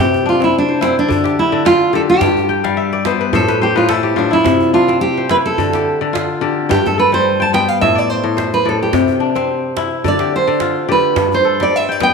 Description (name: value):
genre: west african traditional, West African string and xylophone music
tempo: 107 BPM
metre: 4/4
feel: swing 54% on 16ths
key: C major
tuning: A4 = 440 Hz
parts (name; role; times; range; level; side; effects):
- nylon-string guitar; melody; 0.0-12.1 s; C4 to A5; -14 LUFS; right 2 dB; none
- kora; arpeggios; 0.0-12.1 s; G2 to G5; -16 LUFS; left 6 dB; none
- djembe; percussion; 0.1-12.1 s; none; -23 LUFS; right 5 dB; none
room: wet echo chamber reverb, RT60 1.8 s, studio ambience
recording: 1960s-style stereo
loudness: -12 LUFS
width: side -5 dB against mid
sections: 0.0-12.1 A section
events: nylon-string guitar solo 0.0-12.1; kora fill 2.5-4.5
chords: 0.0 C; 1.1 Dm; 2.2 G; 3.3 N.C.; 4.5 C; 5.6 Dm; 6.7 G; 7.8 Am; 8.9 C; 10.1 Dm; 11.2 G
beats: 0.53 1.10 1.66 | 2.22 2.78 3.34 3.90 | 4.46 5.03 5.59 6.15 | 6.71 7.27 7.83 8.38 | 8.94 9.50 10.06 10.62 | 11.18 11.73